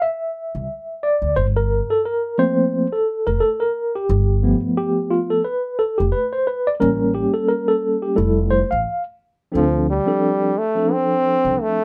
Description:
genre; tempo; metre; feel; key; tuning
hip hop, jazz-hop; 88 BPM; 4/4; swing 59% on 16ths; G dorian; A4 = 440 Hz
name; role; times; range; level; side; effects
mellow tine electric piano; accompaniment; 0.0-11.8 s; F3 to F5; -21 LUFS; equal; medium tremolo
upright bass; bass; 0.5-11.6 s; F1 to D2; -23 LUFS; equal; none
clear trombone; melody; 9.6-11.8 s; F3 to C4; -20 LUFS; equal; none
room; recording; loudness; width
light reverb; rough home demo mix; -20 LUFS; mono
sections
0.0-9.5 A section; 9.5-11.8 B section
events
tine electric piano solo 0.0-9.5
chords
0.0 N.C.; 1.4 Gm11; 4.1 G9; 6.8 A7b9; 8.2 Fmaj7; 9.5 Dm7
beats
0.00 0.68 | 1.36 2.05 2.73 3.41 | 4.09 4.77 5.46 6.14 | 6.82 7.50 8.18 8.87 | 9.55 10.23 10.91 11.59

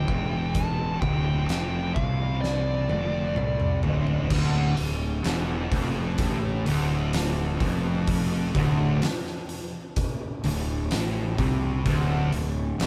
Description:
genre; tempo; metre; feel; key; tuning
stoner and doom metal; 64 BPM; 4/4; straight; D minor; A4 = 440 Hz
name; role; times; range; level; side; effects
fuzz lead guitar; melody; 0.0-3.8 s; D5 to A5; -34 LUFS; equal; wah, distortion
thick fuzz guitar; riff; 0.0-12.9 s; D2 to C3; -34 LUFS; equal; distortion
thick fuzz guitar; riff; 0.0-12.9 s; D2 to C3; -34 LUFS; equal; none
fuzz fingered electric bass; bass; 0.0-12.9 s; D1 to C2; -31 LUFS; equal; overdrive
oversized low-tuned drum kit; drums; 0.1-12.9 s; crash cymbal, hi-hat, kick drum, snare drum, toms; -31 LUFS; equal; none
fuzz guitar; riff; 4.3-12.9 s; D2 to C3; -32 LUFS; equal; distortion
room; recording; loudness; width
light reverb; band playing live in one room; -26 LUFS; mono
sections
0.0-4.3 A section; 4.3-12.9 B section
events
drum fill 2.4-4.3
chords
0.0 Dm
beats
| 0.56 1.49 2.43 3.37 | 4.31 5.25 6.20 7.14 | 8.08 9.03 9.97 10.91 | 11.86 12.80

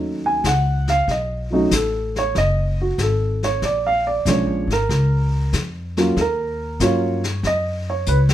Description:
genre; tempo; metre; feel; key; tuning
jazz piano trio; 94 BPM; 4/4; swing 69% on 8ths; unclear; A4 = 438 Hz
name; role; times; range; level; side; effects
dark upright piano; melody; 0.0-8.3 s; F3 to Ab5; -20 LUFS; right 2 dB; none
upright bass; bass; 0.0-8.3 s; F#1 to G2; -22 LUFS; left 1 dB; none
vintage brush drum kit; drums; 0.4-8.3 s; brushed snare drum, hi-hat, kick drum, snare drum; -26 LUFS; left 3 dB; none
room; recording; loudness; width
light reverb; minimal, uncompressed stereo recording; -18 LUFS; side -12 dB against mid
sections
0.0-8.3 A section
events
upright piano solo 0.0-8.3; drum fill 8.1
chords
0.0 B7; 3.6 Bb(#9); 6.2 Ebm7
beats
0.44 | 1.08 1.72 2.35 2.99 | 3.62 4.26 4.90 5.53 | 6.17 6.81 7.44 8.08

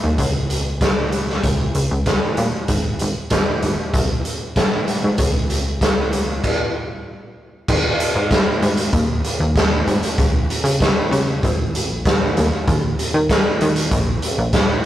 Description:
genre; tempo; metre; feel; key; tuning
quiet-loud alternative rock; 96 BPM; 4/4; straight; unclear; A4 = 439 Hz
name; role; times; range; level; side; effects
plucky analog bass; bass; 0.0-14.8 s; Ab1 to Eb3; -20 LUFS; equal; none
raw garage drum kit; drums; 0.2-14.7 s; crash cymbal, hi-hat, kick drum, snare drum; -18 LUFS; equal; none
room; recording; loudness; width
light reverb; rough rehearsal-room recording, tube saturation; -16 LUFS; side -12 dB against mid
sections
0.0-7.7 A section; 7.7-14.9 B section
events
stop 6.4-7.7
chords
none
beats
| 0.18 0.81 1.44 2.06 | 2.69 3.32 3.94 4.57 | 5.19 5.82 6.44 7.07 | 7.69 8.32 8.94 9.56 | 10.19 10.81 11.43 12.05 | 12.68 13.30 13.92 14.54

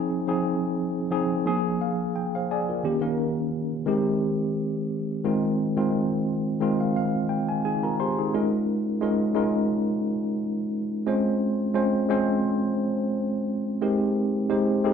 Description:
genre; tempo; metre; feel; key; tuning
soul; 87 BPM; 4/4; swing 54% on 16ths; unclear; A4 = 445 Hz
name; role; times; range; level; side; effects
mellow tine electric piano; solo; 0.0-14.9 s; Eb3 to C6; -23 LUFS; equal; medium stereo tremolo
room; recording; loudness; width
wet large studio reverb, RT60 1.2 s; band playing live in one room; -23 LUFS; side -7 dB against mid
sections
0.0-8.3 A section; 8.3-14.9 B section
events
tine electric piano fill 1.5-2.8, 6.3-8.3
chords
0.0 Fm7; 1.5 Bb7; 2.8 Eb7; 3.9 Abmaj7; 5.2 Fm7; 8.3 Eb9sus4; 11.1 Dbmaj7; 13.8 Abmaj9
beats
| 0.08 0.77 1.46 2.15 | 2.84 3.52 4.21 4.90 | 5.59 6.27 6.96 7.65 | 8.33 9.02 9.71 10.39 | 11.08 11.76 12.45 13.13 | 13.82 14.50

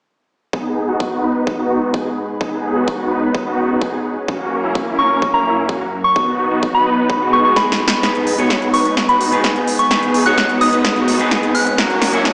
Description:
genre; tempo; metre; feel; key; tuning
EDM, festival progressive house; 128 BPM; 4/4; straight; G# minor; A4 = 440 Hz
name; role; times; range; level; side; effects
lush unison pad; sustained chords; 0.5-12.3 s; F#2 to B4; -29 LUFS; equal; chorus, sidechain pumping
supersaw chords; riff; 0.5-12.3 s; A#3 to B4; -21 LUFS; equal; analog chorus, sidechain pumping, low-pass filter, tape echo
electronic kick drum; drums; 0.5-12.3 s; none; -26 LUFS; equal; high-pass filter on kick
soft synth bell; melody; 5.0-11.8 s; A#5 to F#6; -19 LUFS; equal; chorus, phaser, tape echo
swell and riser; sound effects; 7.3-12.3 s; none; -30 LUFS; equal; none
big-room dance drum kit; drums; 7.6-12.3 s; hi-hat, snare drum; -22 LUFS; equal; none
clean electric guitar; accompaniment; 8.0-12.3 s; G#2 to C#5; -22 LUFS; equal; sidechain pumping
room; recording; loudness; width
moderate huge ambient reverb, RT60 4.9 s; played on a big sound system in a bare room, stone room reverb, high-pass filter, small speaker sound; -16 LUFS; mono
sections
0.5-8.0 A section; 8.0-12.3 B section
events
swell 7.3-8.0; drum fill 7.6-8.0, 8.0-12.3; build-up 8.0-12.3; filter sweep on supersaw synth 8.0-12.3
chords
0.5 G#m; 4.3 F#; 6.2 B; 8.0 G#m; 11.8 F#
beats
| 0.53 1.00 1.47 1.94 | 2.41 2.88 3.35 3.81 | 4.28 4.75 5.22 5.69 | 6.16 6.63 7.10 7.57 | 8.03 8.50 8.97 9.44 | 9.91 10.38 10.85 11.31 | 11.78 12.25

